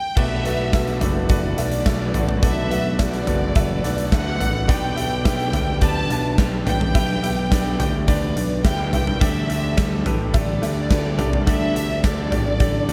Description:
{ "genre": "piano-driven pop", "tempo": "106 BPM", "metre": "4/4", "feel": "straight", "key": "G major", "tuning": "A4 = 440 Hz", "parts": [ { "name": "dark studio violin section", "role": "melody", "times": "0.0-12.9 s", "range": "D5 to A5", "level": "-30 LUFS", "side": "equal", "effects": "slapback echo" }, { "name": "clear upright piano", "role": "accompaniment", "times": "0.2-12.9 s", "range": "B2 to E5", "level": "-30 LUFS", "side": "equal", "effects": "slapback echo" }, { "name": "picked plugged-in steel-string acoustic guitar", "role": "riff", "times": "0.2-12.9 s", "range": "B2 to B4", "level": "-32 LUFS", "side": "equal", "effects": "slapback echo" }, { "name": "fuzz picked electric bass", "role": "bass", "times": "0.2-12.9 s", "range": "F#1 to D2", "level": "-27 LUFS", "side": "equal", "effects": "overdrive" }, { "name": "huge arena drum kit", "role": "drums", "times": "0.2-12.9 s", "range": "crash cymbal, hi-hat, kick drum, snare drum, toms", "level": "-24 LUFS", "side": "equal", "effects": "none" } ], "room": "light reverb, small room ambience", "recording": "none", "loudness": "-20 LUFS", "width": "mono", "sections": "0.2-12.9 A section", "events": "stop 0.0", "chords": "0.2 Bm7; 4.7 G" }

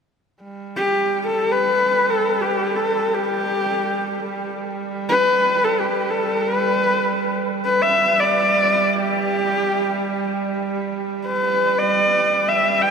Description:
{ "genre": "mongolian traditional, Mongolian folk", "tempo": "free time", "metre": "none", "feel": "none", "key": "G gong mode", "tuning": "A4 = 445 Hz", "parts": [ { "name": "clear horsehead fiddle", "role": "drone", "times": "0.4-12.9 s", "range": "G3", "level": "-26 LUFS", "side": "right 5 dB", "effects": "none" }, { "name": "warm horsehead fiddle", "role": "melody", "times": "0.8-12.9 s", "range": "G4 to G5", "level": "-18 LUFS", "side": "left 1 dB", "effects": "none" } ], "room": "wet cathedral reverb, RT60 6.2 s", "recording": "recorded in a church or concert hall", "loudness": "-17 LUFS", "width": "side -6 dB against mid", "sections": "0.4-12.9 A section", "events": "none", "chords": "none" }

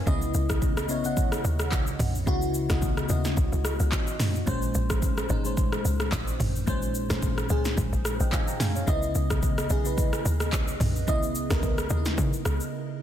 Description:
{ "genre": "amapiano", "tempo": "109 BPM", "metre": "4/4", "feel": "swing 55% on 16ths", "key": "unclear", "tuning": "A4 = 438 Hz", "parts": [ { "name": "FM electric piano with soft pad layer", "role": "accompaniment", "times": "0.0-13.0 s", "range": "Bb2 to Bb5", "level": "-30 LUFS", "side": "left 1 dB", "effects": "chorus, phaser" }, { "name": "tight log drum bass", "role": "bass", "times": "0.1-12.6 s", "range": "Ab1 to Db3", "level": "-28 LUFS", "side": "equal", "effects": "none" }, { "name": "deep house drum kit", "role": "drums", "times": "0.1-12.7 s", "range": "handclaps, hi-hat, kick drum, rim click, shaker, snare drum, toms", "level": "-27 LUFS", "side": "equal", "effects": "overdrive" } ], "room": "digital ambience", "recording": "dense, heavily limited modern master", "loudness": "-24 LUFS", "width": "side -10 dB against mid", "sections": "0.0-13.0 A section", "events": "break 12.7", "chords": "0.1 Dbm9; 4.5 Bbm9; 8.9 Dbm9" }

